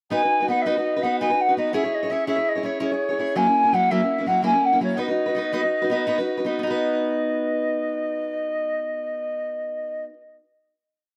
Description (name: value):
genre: celtic folk, Celtic slip jig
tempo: 110 BPM (dotted quarters)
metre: 9/8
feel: straight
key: B major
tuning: A4 = 440 Hz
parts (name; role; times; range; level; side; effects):
- baroque flute; melody; 0.1-10.0 s; C#5 to G#5; -25 LUFS; equal; slapback echo
- picked steel-string acoustic guitar; accompaniment; 0.1-10.2 s; F#3 to C#5; -27 LUFS; equal; slapback echo
room: little or no reverb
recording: recorded outdoors, with no room sound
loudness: -23 LUFS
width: mono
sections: 0.1-6.6 A section; 6.6-9.9 final chord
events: none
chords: 0.1 B; 1.7 C#m; 3.4 F#7; 5.0 B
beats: | 0.11 0.65 1.19 | 1.73 2.27 2.81 | 3.35 3.90 4.44 | 4.99 5.53 6.08 | 6.62 7.17 7.72 | 8.26 8.81 9.35